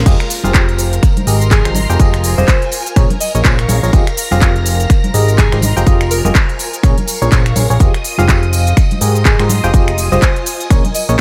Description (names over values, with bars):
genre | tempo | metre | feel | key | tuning
piano house | 124 BPM | 4/4 | swing 59% on 16ths | F minor | A4 = 440 Hz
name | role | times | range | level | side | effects
string machine, violins | sustained chords | 0.0-11.2 s | Bb4 to Eb6 | -29 LUFS | equal | ensemble chorus, sidechain pumping
barking FM electric piano | riff | 0.0-11.2 s | Bb2 to G5 | -22 LUFS | equal | chorus, tremolo, sidechain pumping, dub echo
fat analog bass | bass | 0.0-11.2 s | F1 to Ab2 | -17 LUFS | equal | sidechain pumping
dark studio string section | texture | 0.0-11.2 s | Ab3 to Db6 | -28 LUFS | equal | sidechain pumping
electronic kick drum | drums | 0.1-10.8 s | none | -14 LUFS | equal | none
house drum kit | drums | 0.1-11.2 s | crash cymbal, finger snaps, handclaps, hi-hat, shaker | -22 LUFS | equal | none
tambourine and congas | percussion | 0.1-11.2 s | none | -26 LUFS | equal | none
mellow alto saxophone | melody | 1.5-6.3, 9.3-11.2 s | Ab4 to Eb5 | -25 LUFS | equal | dub echo
room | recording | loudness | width
little or no reverb | none | -13 LUFS | mono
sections
0.0-11.2 A section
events
none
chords
0.1 Fm9; 1.0 Abmaj9; 1.8 Fm9; 3.0 Bbm9; 3.9 Fm9; 4.9 Abmaj9; 5.6 Fm9; 6.8 Bbm9; 7.8 Fm9; 8.8 Abmaj9; 9.5 Fm9; 10.7 Bbm7